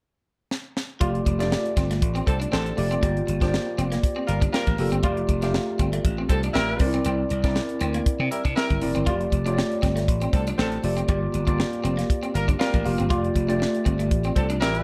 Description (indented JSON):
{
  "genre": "polished 1980s jazz-funk pop",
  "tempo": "119 BPM",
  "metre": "4/4",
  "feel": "swing 54% on 16ths",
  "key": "F major",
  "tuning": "A4 = 442 Hz",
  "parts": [
    { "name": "tight funk drum kit", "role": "drums", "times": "0.5-14.8 s", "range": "hi-hat, kick drum, snare drum", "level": "-28 LUFS", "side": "equal", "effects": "none" },
    { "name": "tine electric piano", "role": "accompaniment", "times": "1.0-14.8 s", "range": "A3 to F5", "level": "-29 LUFS", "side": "equal", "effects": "lush chorus" },
    { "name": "clean electric guitar", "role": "riff", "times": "1.0-14.7 s", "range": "G3 to F4", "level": "-35 LUFS", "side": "equal", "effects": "subtle chorus" },
    { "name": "slap bass", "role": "bass", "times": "1.0-14.8 s", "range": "F1 to C3", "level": "-28 LUFS", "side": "equal", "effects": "none" },
    { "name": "warm horn section", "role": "second line", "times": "2.3-14.8 s", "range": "D3 to Bb4", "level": "-30 LUFS", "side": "equal", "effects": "none" }
  ],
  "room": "light reverb",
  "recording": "dark, warm production",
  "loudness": "-24 LUFS",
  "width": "mono",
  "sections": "0.0-1.0 A section; 1.0-14.8 B section",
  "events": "drum fill 0.5-1.0",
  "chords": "0.0 N.C.; 1.0 F69; 3.0 Gm7; 5.0 F69; 6.8 C9; 9.1 F69; 11.1 Gm7; 13.1 F69",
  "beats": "0.00 0.50 | 1.01 1.51 2.02 2.52 | 3.02 3.53 4.03 4.54 | 5.04 5.54 6.05 6.55 | 7.06 7.56 8.06 8.57 | 9.07 9.57 10.08 10.58 | 11.09 11.59 12.09 12.60 | 13.10 13.61 14.11 14.61"
}